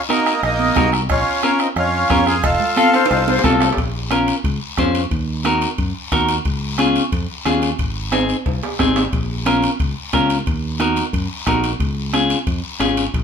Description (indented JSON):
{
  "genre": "latin, cumbia",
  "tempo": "179 BPM",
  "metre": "4/4",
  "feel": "straight",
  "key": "Bb minor from 3.8 s",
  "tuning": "A4 = 441 Hz",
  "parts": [
    { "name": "accordion", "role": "melody", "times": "0.1-3.4 s", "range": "Bb3 to A4", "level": "-18 LUFS", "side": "right 1 dB", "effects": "none" },
    { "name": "clean electric guitar", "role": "accompaniment", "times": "0.1-13.0 s", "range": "C4 to C5", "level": "-18 LUFS", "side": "left 2 dB", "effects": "none" },
    { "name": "bombo", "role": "percussion", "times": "0.1-13.2 s", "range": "none", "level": "-24 LUFS", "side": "left 1 dB", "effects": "none" },
    { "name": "congas", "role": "percussion", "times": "0.1-13.2 s", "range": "none", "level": "-25 LUFS", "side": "right 6 dB", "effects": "none" },
    { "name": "guiro", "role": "percussion", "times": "0.1-13.2 s", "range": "none", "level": "-29 LUFS", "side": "left 5 dB", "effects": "none" },
    { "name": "fingered electric bass", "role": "bass", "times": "0.4-13.2 s", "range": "F1 to Gb2", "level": "-24 LUFS", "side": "equal", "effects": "none" },
    { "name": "cowbell and timbales", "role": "percussion", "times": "0.4-13.2 s", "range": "none", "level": "-27 LUFS", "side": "right 4 dB", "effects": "none" },
    { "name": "breathy bright jazz flute", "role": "second line", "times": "2.8-3.8 s", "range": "A4 to F5", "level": "-18 LUFS", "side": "left 7 dB", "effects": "none" }
  ],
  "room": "moderate studio reverb, RT60 0.7 s",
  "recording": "minimal, uncompressed stereo recording",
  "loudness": "-16 LUFS",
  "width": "side -7 dB against mid",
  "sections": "0.0-3.8 A section; 3.8-13.2 B section",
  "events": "drum fill 2.9-3.8, 8.1-9.1",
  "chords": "0.0 Ebm; 1.1 Bbm; 2.4 F; 3.8 Bbm; 5.1 Ebm; 6.5 Db; 7.8 Ab; 9.1 Bbm; 10.5 Ebm; 11.8 Db"
}